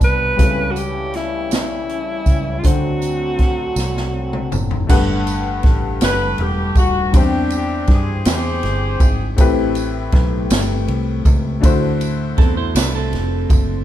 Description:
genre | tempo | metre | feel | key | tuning
slow gospel | 53 BPM (dotted quarters) | 6/8 | straight | G major | A4 = 438 Hz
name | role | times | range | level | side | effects
bright alto saxophone | melody | 0.0-4.5 s | E4 to B4 | -22 LUFS | equal | none
warm upright piano | accompaniment | 0.0-13.8 s | G2 to G5 | -22 LUFS | left 4 dB | none
musette accordion | sustained chords | 0.0-4.9 s | D3 to B4 | -30 LUFS | right 1 dB | none
fingered electric bass | bass | 0.0-13.8 s | Eb1 to G2 | -22 LUFS | right 1 dB | none
swinging big-band drum kit | drums | 0.0-13.7 s | crash cymbal, hi-hat, kick drum, ride cymbal, snare drum, toms | -16 LUFS | equal | none
tambourine | percussion | 0.0-13.8 s | none | -32 LUFS | right 6 dB | none
mellow horn section | melody | 6.0-9.4 s | B#3 to B#4 | -21 LUFS | left 2 dB | none
clean electric guitar | second line | 12.4-13.8 s | C4 to C5 | -24 LUFS | right 7 dB | none
room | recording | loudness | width
moderate large studio reverb, RT60 1.2 s | band playing live in one room | -15 LUFS | side -12 dB against mid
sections
0.0-4.9 A section; 4.9-13.8 B section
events
drum fill 3.8-4.9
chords
0.4 A7/C#; 2.6 D7; 4.9 Gmaj9; 7.1 E7alt; 9.4 Am9; 11.6 D9

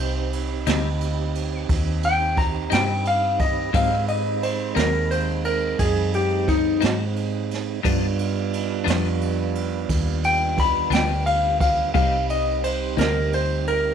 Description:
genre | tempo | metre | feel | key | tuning
slow blues | 58 BPM (dotted quarters) | 12/8 | straight | C harmonic minor | A4 = 440 Hz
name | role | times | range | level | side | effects
clean lap steel guitar | melody | 0.0-13.9 s | Eb4 to B5 | -22 LUFS | left 2 dB | none
tonewheel organ | sustained chords | 0.0-13.9 s | G3 to G4 | -29 LUFS | right 15 dB | slow rotary speaker
vintage muted fingered electric bass | bass | 0.0-13.9 s | C2 to Ab2 | -25 LUFS | left 1 dB | none
jazz brush drum kit | drums | 0.3-13.8 s | kick drum, ride cymbal, snare drum | -26 LUFS | right 2 dB | none
clean electric guitar | accompaniment | 0.7-13.2 s | G2 to Eb4 | -27 LUFS | left 16 dB | harmonic tremolo
room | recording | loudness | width
studio ambience | 1960s-style stereo with parts hard left and right | -20 LUFS | side -8 dB against mid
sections
0.0-13.9 A section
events
electric slide guitar solo 0.0-13.9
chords
0.0 Cm; 3.7 Ab7; 7.8 G7; 12.0 Cm

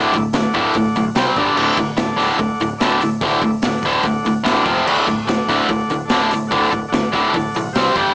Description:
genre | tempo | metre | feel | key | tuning
garage rock duo or trio | 146 BPM | 4/4 | straight | D mixolydian | A4 = 438 Hz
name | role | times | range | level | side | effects
overdriven combo organ | sustained chords | 0.0-8.1 s | F4 to B5 | -23 LUFS | equal | spring reverb
biting overdriven guitar | riff | 0.0-8.1 s | D2 to C4 | -16 LUFS | equal | none
growling picked electric bass | bass | 0.0-8.1 s | D1 to C2 | -28 LUFS | equal | overdrive
raw garage drum kit | drums | 0.1-8.1 s | crash cymbal, hi-hat, kick drum, snare drum | -23 LUFS | equal | none
room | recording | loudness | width
moderate club reverb, RT60 0.5 s | small speaker sound | -14 LUFS | side -27 dB against mid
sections
0.0-8.1 A section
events
transistor combo organ fill 3.6-4.9, 6.9-8.1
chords
0.0 D; 1.2 C5; 1.4 G5; 1.6 D; 4.7 F5; 4.9 D; 7.8 C5

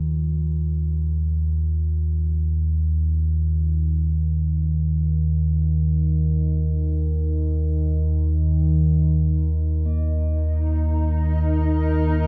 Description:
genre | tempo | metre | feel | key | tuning
dark ambient drone | free time | none | none | unclear | A4 = 440 Hz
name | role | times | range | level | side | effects
deep rumbling drone | drone | 0.0-12.3 s | Eb2 to Eb3 | -22 LUFS | equal | built-in reverb
bronze singing bowl | texture | 0.0-12.3 s | F3 to F4 | -43 LUFS | equal | none
granular cloud pad | sustained chords | 10.4-12.3 s | Eb4 to Bb4 | -29 LUFS | equal | built-in reverb
room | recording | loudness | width
wet cathedral reverb, RT60 7.0 s | dark, warm production | -22 LUFS | mono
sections
0.0-12.3 A section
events
fade-in on singing bowl 0.0-12.3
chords
0.0 Ebsus2

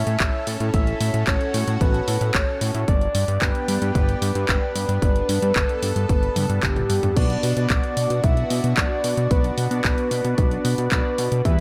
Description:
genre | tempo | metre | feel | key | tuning
italo disco | 112 BPM | 4/4 | straight | B minor | A4 = 440 Hz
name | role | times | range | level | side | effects
soft octave-layered synth lead | melody | 0.0-11.6 s | G4 to E5 | -28 LUFS | equal | chorus, phaser, digital delay
lush unison pad | sustained chords | 0.0-11.6 s | E3 to B4 | -33 LUFS | equal | chorus, phaser
fat analog bass | bass | 0.0-11.6 s | G1 to B2 | -26 LUFS | equal | tube saturation
house drum kit | drums | 0.1-11.6 s | crash cymbal, handclaps, hi-hat, toms | -29 LUFS | equal | none
electronic kick drum | drums | 0.2-11.6 s | none | -24 LUFS | equal | none
analog synth brass | stabs | 7.2-11.6 s | G3 to D5 | -31 LUFS | equal | chorus
room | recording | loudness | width
light reverb, digital ambience | none | -21 LUFS | mono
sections
0.0-11.6 A section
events
drum fill 6.4-7.2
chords
0.0 A; 2.9 G; 7.2 Bm

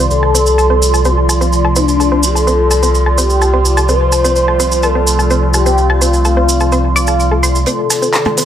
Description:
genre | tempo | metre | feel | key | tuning
melodic techno | 127 BPM | 4/4 | straight | unclear | A4 = 435 Hz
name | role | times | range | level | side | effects
evolving wavetable pad | sustained chords | 0.0-8.4 s | C3 to D5 | -22 LUFS | equal | phaser, built-in reverb
analog pluck | arpeggios | 0.0-8.4 s | A4 to D6 | -19 LUFS | equal | chorus, cassette tape, tape echo
dark detuned saw bass | bass | 0.0-7.6 s | C2 | -14 LUFS | equal | none
airy breathy pad | texture | 0.0-8.4 s | Eb3 to C6 | -19 LUFS | right 1 dB | chorus
expressive synth lead | melody | 0.1-8.4 s | D4 to C5 | -15 LUFS | left 2 dB | wide subtle chorus, tape echo
cabasa | percussion | 0.1-8.4 s | none | -19 LUFS | right 3 dB | none
deep reggae drum kit | drums | 7.7-8.4 s | hi-hat, snare drum | -25 LUFS | right 4 dB | high-pass filter on hats, high-pass filter on snare, high-pass filter on room
riser | sound effects | 8.4 s | none | barely audible | none | none
techno drum kit | drums | 7.9-8.4 s | handclaps, hi-hat, percussion blips | -15 LUFS | left 1 dB | overdrive
room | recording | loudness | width
light reverb | none | -10 LUFS | side -10 dB against mid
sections
0.0-7.7 A section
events
filter sweep on analog synth lead 0.0-7.7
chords
0.1 Dm7/C; 7.7 Cmadd9

